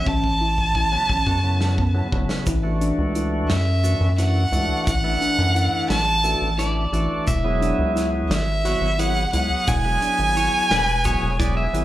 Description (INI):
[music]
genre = progressive instrumental, band music in an uneven meter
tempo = 175 BPM (eighths)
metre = 7/8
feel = straight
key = unclear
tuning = A4 = 438 Hz
[part]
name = rich violin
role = melody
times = 0.0-11.7 s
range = E5 to A5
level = -22 LUFS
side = right 1 dB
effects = slapback echo, tape echo
[part]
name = bright tonewheel organ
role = accompaniment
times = 0.0-11.8 s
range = C#3 to A4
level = -28 LUFS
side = right 1 dB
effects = overdrive, slow rotary speaker, slapback echo
[part]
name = rubbery square bass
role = bass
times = 0.0-11.8 s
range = E1 to F#2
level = -22 LUFS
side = equal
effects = none
[part]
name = mellow tine electric piano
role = arpeggios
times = 0.1-11.8 s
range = B3 to F#4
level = -31 LUFS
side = left 2 dB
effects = phaser, slapback echo
[part]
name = modern studio drum kit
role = drums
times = 0.1-11.8 s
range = hi-hat, kick drum, snare drum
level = -27 LUFS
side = equal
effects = none
[part]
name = tube shaker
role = percussion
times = 2.5-11.4 s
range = none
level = -39 LUFS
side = right 1 dB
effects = none
[part]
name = electric guitar at the edge of break-up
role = second line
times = 6.6-11.8 s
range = B4 to E5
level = -28 LUFS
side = equal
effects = slapback echo
[sound]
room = light reverb, small room reverb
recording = live gig heard through the venue's PA, club reverb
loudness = -18 LUFS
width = side -14 dB against mid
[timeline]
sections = 0.0-2.5 A section; 2.5-11.8 B section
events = drum fill 0.1-2.5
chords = 0.0 Aadd9; 2.5 Dadd9/A; 7.3 Eadd9